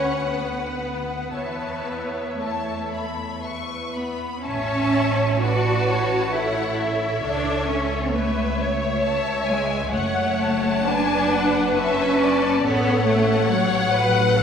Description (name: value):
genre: classical, slow romantic movement for string orchestra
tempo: 57-70 BPM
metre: 3/4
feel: rubato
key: A major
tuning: A4 = 442 Hz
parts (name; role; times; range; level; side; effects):
- rich studio violin section; melody; 0.0-14.4 s; E5 to C#6; -29 LUFS; left 6 dB; none
- dark symphonic violin section; second line; 0.0-14.4 s; A4 to G#5; -28 LUFS; left 3 dB; none
- rich symphonic viola section; accompaniment; 0.0-14.4 s; A4 to F#5; -26 LUFS; left 1 dB; none
- clear symphonic cello section; bass; 0.0-14.4 s; F#3 to F#4; -24 LUFS; right 1 dB; none
- clear symphonic double bass section; bass; 0.0-14.4 s; F#1 to E2; -27 LUFS; right 3 dB; none
room: wet concert hall reverb, RT60 2.1 s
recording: heard from further back in the room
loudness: -20 LUFS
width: side -7 dB against mid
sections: 0.0-4.4 A section; 4.4-14.4 B section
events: none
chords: 0.0 Bm/D; 1.3 A/E; 3.4 E5; 4.4 A; 7.2 A/C#; 9.9 F#m; 12.6 F#m/A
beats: 0.31 | 1.34 2.39 3.42 | 4.45 5.42 6.34 | 7.23 8.13 9.02 | 9.92 10.86 11.76 | 12.64 13.51 14.37